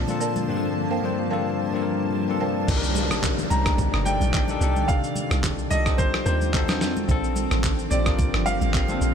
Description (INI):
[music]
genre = amapiano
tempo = 109 BPM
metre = 4/4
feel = swing 55% on 16ths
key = C dorian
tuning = A4 = 440 Hz
[part]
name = bell-like tine electric piano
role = accompaniment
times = 0.0-9.1 s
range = G2 to C5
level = -28 LUFS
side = left 7 dB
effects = none
[part]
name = granular cloud pad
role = sustained chords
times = 0.0-9.1 s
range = Bb2 to A5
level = -29 LUFS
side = right 1 dB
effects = built-in reverb, sidechain pumping
[part]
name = dusty soul sampler-style drum kit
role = drums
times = 0.1-9.1 s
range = crash cymbal, handclaps, kick drum, rim click, shaker, snare drum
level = -25 LUFS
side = right 1 dB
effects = none
[part]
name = congas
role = percussion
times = 0.1-9.0 s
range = none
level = -33 LUFS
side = right 3 dB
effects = none
[part]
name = buzzing marimba with medium mallets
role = stabs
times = 0.2-2.5 s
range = Bb4 to A5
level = -32 LUFS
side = right 6 dB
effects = ping-pong delay
[part]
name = deep log drum bass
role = bass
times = 2.7-9.1 s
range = G1 to F2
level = -25 LUFS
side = right 1 dB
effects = none
[part]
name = downlifter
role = sound effects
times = 2.7-7.1 s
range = none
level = -32 LUFS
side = left 1 dB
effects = none
[part]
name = clear concert grand piano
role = melody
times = 3.5-9.1 s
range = C5 to Bb5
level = -28 LUFS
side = equal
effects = ping-pong delay
[sound]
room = light reverb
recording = none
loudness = -21 LUFS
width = side -7 dB against mid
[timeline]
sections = 0.0-2.7 A section; 2.7-9.1 B section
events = drop 2.7-9.1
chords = 0.5 Gm11; 2.7 Cm9; 4.6 F13/C; 6.5 F7b9; 7.1 Bbmaj7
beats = | 0.48 1.03 1.58 2.13 | 2.68 3.23 3.79 4.33 | 4.89 5.44 5.99 6.54 | 7.09 7.64 8.19 8.74